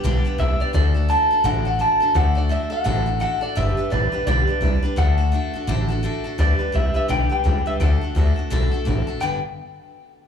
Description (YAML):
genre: rockabilly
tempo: 170 BPM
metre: 4/4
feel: swing 60% on 8ths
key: G major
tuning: A4 = 439 Hz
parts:
  - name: picked steel-string acoustic guitar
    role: accompaniment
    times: 0.0-9.4 s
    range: G2 to B4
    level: -26 LUFS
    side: left 1 dB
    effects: slapback echo
  - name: upright bass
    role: bass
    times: 0.0-9.4 s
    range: G1 to D2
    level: -20 LUFS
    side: equal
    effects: none
  - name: electric guitar through a small old amp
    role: melody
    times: 0.4-9.4 s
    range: D5 to A5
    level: -23 LUFS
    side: equal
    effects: slapback echo, analog delay
room: small room ambience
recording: live gig heard through the venue's PA, club reverb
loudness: -18 LUFS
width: side -7 dB against mid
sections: 0.0-6.4 A section; 6.4-9.2 B section; 9.2-10.3 C section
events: none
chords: 0.0 G; 0.7 D; 3.6 G; 5.0 D; 6.4 G; 7.8 D; 9.2 G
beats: 0.03 0.39 | 0.74 1.09 1.44 1.80 | 2.15 2.50 2.86 3.21 | 3.56 3.92 4.27 4.62 | 4.97 5.33 5.68 6.03 | 6.39 6.74 7.09 7.45 | 7.80 8.15 8.51 8.86 | 9.21